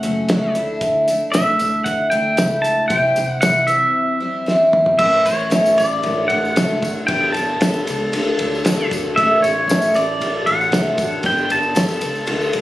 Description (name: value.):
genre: folk rock and heartland rock.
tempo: 115 BPM.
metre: 4/4.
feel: straight.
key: unclear.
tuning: A4 = 439 Hz.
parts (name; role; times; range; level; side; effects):
pedal steel guitar; melody; 0.0-12.6 s; C#5 to A5; -19 LUFS; equal; none.
picked twelve-string acoustic guitar; accompaniment; 0.0-12.6 s; A2 to A4; -18 LUFS; equal; none.
upright bass; bass; 0.0-12.6 s; F#1 to D2; -30 LUFS; equal; none.
cloth-damped thuddy drum kit; drums; 0.0-12.6 s; crash cymbal, hi-hat, kick drum, ride cymbal, snare drum, toms; -22 LUFS; equal; none.
tambourine; percussion; 0.8-12.6 s; none; -34 LUFS; right 1 dB; none.
room: moderate large studio reverb, RT60 0.9 s, small room ambience.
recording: recorded on a phone in the room, studio reverb, compression.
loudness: -15 LUFS.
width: side -16 dB against mid.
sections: 0.0-5.0 A section; 5.0-12.6 B section.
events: drum fill 4.5-5.0.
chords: 0.0 F#m; 0.6 Dsus2; 2.9 C; 5.0 A; 6.0 D/A; 7.1 Gadd9; 8.1 D; 9.2 A; 10.2 D/A; 11.2 Gadd9.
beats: 0.29 | 0.81 1.34 1.86 2.38 | 2.91 3.43 3.95 4.47 | 5.00 5.52 6.04 6.56 | 7.08 7.61 8.13 8.65 | 9.17 9.69 10.21 10.73 | 11.24 11.76 12.28.